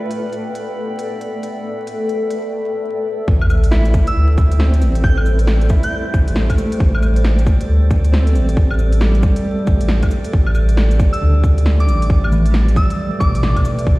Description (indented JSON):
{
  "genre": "future garage",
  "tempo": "136 BPM",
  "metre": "4/4",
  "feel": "swing 62% on 16ths",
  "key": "A minor",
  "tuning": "A4 = 440 Hz",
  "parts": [
    { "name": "mellow electric guitar", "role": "accompaniment", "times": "0.0-14.0 s", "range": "B2 to B4", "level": "-24 LUFS", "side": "right 1 dB", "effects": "tremolo, sidechain pumping, analog delay" },
    { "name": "granular cloud pad", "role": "sustained chords", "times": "0.0-14.0 s", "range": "A3 to G5", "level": "-25 LUFS", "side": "left 2 dB", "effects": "built-in reverb, sidechain pumping" },
    { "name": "drifting glass-harmonics texture", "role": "texture", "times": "0.0-14.0 s", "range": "G3 to B5", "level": "-30 LUFS", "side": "right 2 dB", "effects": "chorus, built-in reverb" },
    { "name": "garage drum kit", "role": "drums", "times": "0.1-13.9 s", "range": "cabasa, claves, hi-hat, snare drum", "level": "-25 LUFS", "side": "equal", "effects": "none" },
    { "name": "warm sub bass", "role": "bass", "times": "3.3-14.0 s", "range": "A1 to D2", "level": "-14 LUFS", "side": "equal", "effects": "sidechain pumping" },
    { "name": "electronic kick drum", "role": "drums", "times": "3.3-14.0 s", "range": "none", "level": "-15 LUFS", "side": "equal", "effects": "none" },
    { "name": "sub drop", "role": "sound effects", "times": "3.3-5.0 s", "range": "none", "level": "-22 LUFS", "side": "equal", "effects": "none" },
    { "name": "soft synth bell", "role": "melody", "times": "4.1-6.1, 11.1-13.6 s", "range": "D6 to G6", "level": "-26 LUFS", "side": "equal", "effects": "chorus, analog delay" }
  ],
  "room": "little or no reverb",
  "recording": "played on a big sound system in a bare room, stone room reverb, vinyl crackle",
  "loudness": "-13 LUFS",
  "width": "side -20 dB against mid",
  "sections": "0.0-3.3 A section; 3.3-14.0 B section",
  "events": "filter sweep on ambient pad 0.0-3.3; filter sweep on clean electric guitar 0.0-3.3; impact 3.3-5.0",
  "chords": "0.0 G; 3.3 Am11; 10.3 G/A"
}